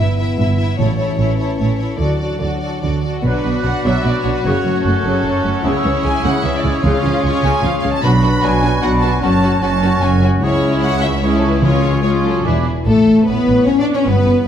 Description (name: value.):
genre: cinematic.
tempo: 150 BPM.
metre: 3/4.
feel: straight.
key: unclear.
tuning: A4 = 440 Hz.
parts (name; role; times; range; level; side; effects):
clear symphonic violin section; melody; 0.0-14.5 s; E4 to E5; -26 LUFS; left 4 dB; none.
rich studio violin section; second line; 0.0-14.5 s; G#4 to B5; -24 LUFS; left 1 dB; none.
rich symphonic viola section; accompaniment; 0.0-14.5 s; C#3 to F#4; -23 LUFS; right 2 dB; none.
dark French horn section; sustained chords; 0.0-14.5 s; E3 to F#4; -21 LUFS; left 3 dB; none.
concert harp; arpeggios; 0.0-14.5 s; F#2 to C#6; -25 LUFS; left 8 dB; none.
clear studio cello section; bass; 0.0-14.4 s; C#2 to D4; -20 LUFS; right 2 dB; none.
rich studio double bass section; bass; 0.0-14.3 s; E1 to D2; -20 LUFS; right 2 dB; none.
timpani; percussion; 0.8-1.3, 6.8-7.4, 11.6-12.2 s; A2 to C#3; -23 LUFS; equal; none.
clear clarinet; second line; 3.2-12.7 s; C#4 to E#4; -26 LUFS; left 1 dB; none.
mellow hollow large flute ensemble; second line; 3.2-12.7 s; B5 to F#6; -27 LUFS; right 3 dB; none.
warm oboe; second line; 3.2-12.7 s; F#4 to C#5; -27 LUFS; right 1 dB; none.
mellow trumpet; stabs; 3.2-12.7 s; B4 to D5; -25 LUFS; right 2 dB; none.
room: wet recital hall reverb, RT60 1.4 s.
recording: none.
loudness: -13 LUFS.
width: side -9 dB against mid.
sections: 0.0-3.2 A section; 3.2-12.9 B section; 12.9-14.5 C section.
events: none.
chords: 0.0 Em/G; 0.8 A; 2.0 D; 3.2 Bm; 4.4 F#m; 5.6 C#m; 6.8 C#; 8.0 Bm; 9.2 F#m; 10.4 C#m; 11.6 C#; 12.4 E7; 12.9 A.